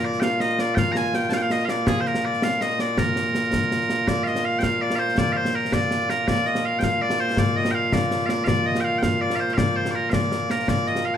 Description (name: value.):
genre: scottish traditional, Scottish pipe music.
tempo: 109 BPM (dotted quarters).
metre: 6/8.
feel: straight.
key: Bb major.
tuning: A4 = 439 Hz.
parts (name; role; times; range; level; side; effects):
loud bright bagpipes; melody; 0.0-11.2 s; Bb2 to Bb5; -22 LUFS; equal; none.
concert snare drum and concert bass drum; drums; 0.1-11.0 s; none; -25 LUFS; left 1 dB; none.
room: moderate recital hall reverb, RT60 1.6 s.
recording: none.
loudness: -20 LUFS.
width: side -9 dB against mid.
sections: 0.0-4.1 A section; 4.1-11.2 B section.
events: none.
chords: none.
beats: 0.22 | 0.78 1.32 | 1.88 2.43 | 2.98 3.53 | 4.08 4.63 | 5.18 5.73 | 6.28 6.83 | 7.38 7.93 | 8.48 9.03 | 9.58 10.13 | 10.68.